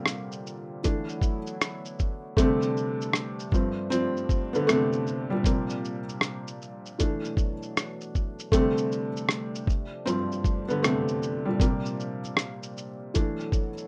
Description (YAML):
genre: lo-fi hip hop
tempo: 78 BPM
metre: 4/4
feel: swing 63% on 16ths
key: unclear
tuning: A4 = 440 Hz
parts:
  - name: felt-muted upright piano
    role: accompaniment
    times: 0.0-13.9 s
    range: G2 to D4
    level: -30 LUFS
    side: equal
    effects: none
  - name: warm analog pad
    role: sustained chords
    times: 0.0-13.9 s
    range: B2 to A4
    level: -41 LUFS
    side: equal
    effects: chorus, plate reverb
  - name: lo-fi sampler-style drum kit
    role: drums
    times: 0.1-13.9 s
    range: hi-hat, kick drum, rim click, shaker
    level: -29 LUFS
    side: equal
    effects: vintage 12-bit sampler grit
room: moderate studio reverb, RT60 0.5 s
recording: rough home demo mix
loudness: -28 LUFS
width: mono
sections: 0.0-13.9 A section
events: felt piano solo 0.0-13.9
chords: 0.0 C9sus4; 0.8 E9sus4; 2.4 D9sus4; 3.5 G9sus4; 5.4 C9sus4; 7.0 E9sus4; 8.5 D9sus4; 9.7 G9sus4; 11.6 C9sus4; 13.1 E9sus4